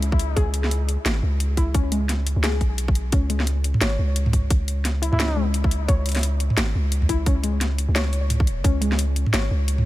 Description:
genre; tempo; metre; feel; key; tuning
half-time drum and bass; 174 BPM; 4/4; swing 59% on 16ths, half-time; C# minor; A4 = 441 Hz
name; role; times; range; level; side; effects
long sustained 808-style bass; bass; 0.0-9.9 s; D1 to C#2; -22 LUFS; equal; none
drum and bass drum kit; drums; 0.0-9.8 s; hi-hat, snare drum, toms; -26 LUFS; equal; overdrive
electronic kick drum; drums; 0.1-8.7 s; none; -20 LUFS; equal; overdrive
warbly dusty pluck; arpeggios; 0.4-9.5 s; G#3 to C#5; -30 LUFS; left 3 dB; chorus, cassette tape, tape echo
trumpet with bucket mute; melody; 5.1-5.5 s; E4; -33 LUFS; left 1 dB; ping-pong delay
room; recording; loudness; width
little or no reverb; none; -19 LUFS; side -16 dB against mid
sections
0.0-9.9 A section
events
none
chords
0.0 C#5

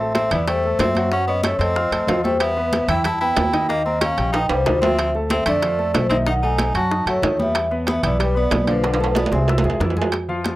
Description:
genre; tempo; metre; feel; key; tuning
Afro-Cuban jazz; 186 BPM; 4/4; straight; unclear; A4 = 440 Hz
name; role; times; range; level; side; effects
vibraphone with soft mallets; melody; 0.0-9.8 s; B4 to A5; -22 LUFS; equal; plate reverb, tape echo
bright tenor saxophone; second line; 0.0-9.8 s; F3 to F#4; -26 LUFS; left 1 dB; plate reverb, tape echo
warm grand piano; accompaniment; 0.0-10.6 s; D3 to F6; -26 LUFS; left 1 dB; none
upright bass; bass; 0.0-10.6 s; A1 to F#2; -24 LUFS; equal; none
timbales; percussion; 0.1-10.6 s; none; -25 LUFS; right 4 dB; none
bongos; percussion; 0.2-10.6 s; none; -28 LUFS; left 3 dB; none
congas; percussion; 0.2-10.6 s; none; -28 LUFS; equal; none
room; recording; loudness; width
moderate studio ambience, RT60 0.5 s; dry, gritty hardware recording, transformer saturation; -17 LUFS; side -16 dB against mid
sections
0.0-10.1 A section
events
drum fill 4.3-5.0, 8.8-10.1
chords
0.0 Am7; 1.1 F#m; 1.8 F9; 2.4 Em; 3.7 D#9; 5.0 Dm; 6.3 B7; 7.6 Em7; 8.8 Bm7b5; 9.5 Caug

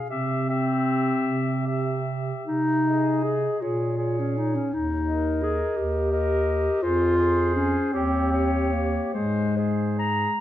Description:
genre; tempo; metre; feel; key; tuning
classical, lyrical piece for single-reed quartet; 47-58 BPM (dotted quarters); 6/8; rubato; Ab major; A4 = 441 Hz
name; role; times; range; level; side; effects
warm clarinet; melody; 0.0-10.4 s; C5 to Bb5; -31 LUFS; left 4 dB; none
clear alto saxophone; second line; 0.0-10.3 s; G4 to Bb4; -32 LUFS; right 4 dB; none
mellow clarinet; accompaniment; 0.1-10.4 s; Ab3 to Ab4; -24 LUFS; left 2 dB; none
mellow bass clarinet; bass; 0.1-10.3 s; Eb2 to C3; -28 LUFS; right 2 dB; none
room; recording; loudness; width
moderate scoring stage reverb, RT60 1.7 s; none; -22 LUFS; side -12 dB against mid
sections
0.0-10.4 A section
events
none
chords
0.1 C; 2.5 Ab/C; 3.6 Bbm7; 4.7 Eb; 6.8 Fm; 7.9 Eb7; 9.1 Ab

